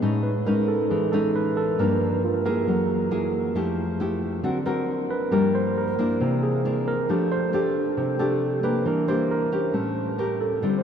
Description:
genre	bossa nova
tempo	136 BPM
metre	4/4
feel	straight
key	F major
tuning	A4 = 440 Hz
part	barky tine electric piano	accompaniment	0.0-10.8 s	F2 to C5	-25 LUFS	right 3 dB	overdrive
part	nylon-string guitar	accompaniment	0.0-10.8 s	G2 to Bb4	-24 LUFS	left 2 dB	none
room	wet huge ambient reverb, RT60 7.7 s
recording	dreamy mix soaked in reverb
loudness	-21 LUFS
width	side -8 dB against mid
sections	0.0-7.1 A section; 7.1-10.8 A section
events	tine electric piano solo 0.0-10.8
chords	0.0 Amaj7#11; 1.8 Gm7; 2.7 Gb9; 3.6 Fmaj9; 4.4 D7b13; 5.3 Gm7; 6.2 C9; 7.1 F69; 8.9 Em7b5; 9.7 A7b9

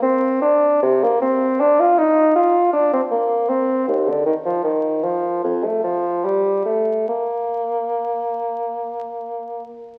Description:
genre	classical, baroque-style fantasia for unaccompanied bassoon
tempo	68-80 BPM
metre	4/4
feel	rubato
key	Bb major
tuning	A4 = 440 Hz
part	mellow bassoon	solo	0.0-9.6 s	Eb2 to F4	-19 LUFS	equal	none
room	wet recital hall reverb, RT60 1.4 s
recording	very old 78 rpm record, vinyl crackle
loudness	-19 LUFS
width	mono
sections	0.0-10.0 A section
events	none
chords	none

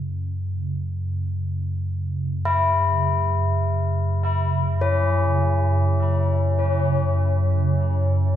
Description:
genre	ambient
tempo	free time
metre	none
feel	none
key	unclear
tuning	A4 = 439 Hz
part	deep rumbling drone	drone	0.0-8.4 s	F#2 to C#3	-21 LUFS	right 1 dB	built-in reverb, phaser
part	tubular bells	arpeggios	2.5-8.4 s	C#4 to E4	-23 LUFS	left 3 dB	tape echo
room	moderate spring reverb, RT60 2.7 s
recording	echo-heavy mix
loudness	-20 LUFS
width	side -10 dB against mid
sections	0.0-8.4 A section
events	filter sweep on synth drone 0.0-8.4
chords	0.0 F#5

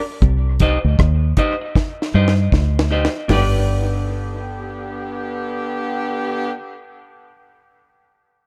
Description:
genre	roots reggae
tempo	78 BPM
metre	4/4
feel	swing 62% on 16ths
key	unclear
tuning	A4 = 435 Hz
part	deep dub fingered electric bass	bass	0.2-6.5 s	G1 to G2	-20 LUFS	equal	none
part	deep reggae drum kit	drums	0.2-3.5 s	hi-hat, kick drum, rim click, snare drum, toms	-21 LUFS	equal	none
part	semi-hollow electric guitar	accompaniment	0.6-6.8 s	D4 to Eb5	-26 LUFS	equal	dub echo
part	warm horn section	second line	3.3-6.5 s	D3 to G4	-27 LUFS	equal	dub echo
room	light reverb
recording	none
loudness	-19 LUFS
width	mono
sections	0.0-3.3 A section; 3.3-6.4 B section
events	drum fill 1.8-3.3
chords	0.2 Cm; 3.3 G

